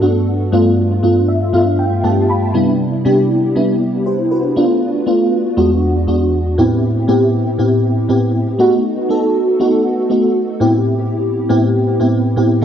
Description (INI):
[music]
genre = pop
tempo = 119 BPM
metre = 4/4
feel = swing 54% on 16ths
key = unclear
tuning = A4 = 440 Hz
[part]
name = FM electric piano with soft pad layer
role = solo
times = 0.0-12.6 s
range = E2 to B5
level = -12 LUFS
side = equal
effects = ensemble chorus, cassette tape, analog delay
[sound]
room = moderate lush hall reverb, RT60 2.2 s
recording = home recording on cassette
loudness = -12 LUFS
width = side -9 dB against mid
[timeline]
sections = 0.0-10.6 A section; 10.6-12.6 B section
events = FM electric piano fill 1.0-2.5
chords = 0.0 Gmaj9; 0.5 G7; 2.5 Cmaj7; 4.6 Bm7b5; 5.6 E7; 6.6 Am7; 8.6 B7; 10.6 Am9